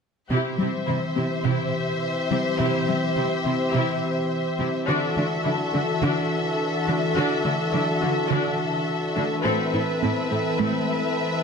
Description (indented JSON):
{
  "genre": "cinematic, hybrid orchestral and electronic film score",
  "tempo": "105 BPM",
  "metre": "4/4",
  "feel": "straight",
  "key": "unclear",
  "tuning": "A4 = 436 Hz",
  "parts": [
    { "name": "warm symphonic violin section", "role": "second line", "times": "0.3-11.4 s", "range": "A4 to E5", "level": "-27 LUFS", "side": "left 5 dB", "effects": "none" },
    { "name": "rich symphonic viola section", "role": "accompaniment", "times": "0.3-10.9 s", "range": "C4 to A4", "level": "-30 LUFS", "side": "left 1 dB", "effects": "none" },
    { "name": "warm analog pad", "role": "sustained chords", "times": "0.3-11.4 s", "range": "E3 to C5", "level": "-26 LUFS", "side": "equal", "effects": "chorus" },
    { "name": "resonant blip pluck", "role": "arpeggios", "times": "0.3-10.8 s", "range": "C3 to A4", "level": "-30 LUFS", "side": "right 2 dB", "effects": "phaser, ping-pong delay" },
    { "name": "clear symphonic cello section", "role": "bass", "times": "0.3-10.7 s", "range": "A2 to D3", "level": "-29 LUFS", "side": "right 2 dB", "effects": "none" }
  ],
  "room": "wet scoring stage reverb, RT60 1.7 s",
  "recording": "none",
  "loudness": "-21 LUFS",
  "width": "side -5 dB against mid",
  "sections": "0.3-11.4 A section",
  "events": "none",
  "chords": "0.3 C; 4.9 Dadd9; 9.5 Amadd9"
}